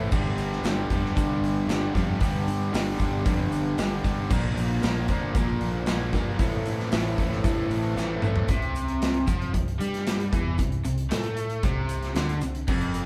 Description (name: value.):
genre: classic rock.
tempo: 115 BPM.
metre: 4/4.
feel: straight.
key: C major from 8.5 s.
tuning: A4 = 444 Hz.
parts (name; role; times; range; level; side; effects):
biting overdriven guitar; riff; 0.0-13.1 s; F2 to Bb4; -34 LUFS; equal; none.
overdriven electric guitar; riff; 0.0-13.1 s; F2 to Bb3; -35 LUFS; equal; spring reverb.
overdriven electric guitar; riff; 0.0-13.1 s; F2 to Bb3; -35 LUFS; equal; none.
fingered electric bass; bass; 0.0-13.1 s; F1 to A2; -33 LUFS; equal; none.
big rock drum kit; drums; 0.1-13.1 s; crash cymbal, hi-hat, kick drum, snare drum, toms; -30 LUFS; equal; none.
tube shaker; percussion; 0.1-13.1 s; none; -54 LUFS; equal; none.
room: wet large studio reverb, RT60 1.4 s.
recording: band playing live in one room.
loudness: -26 LUFS.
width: mono.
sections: 0.0-8.5 A section; 8.5-13.1 B section.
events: drum fill 8.0-8.5.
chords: 0.1 G; 4.3 Bb; 6.4 Am; 8.5 C.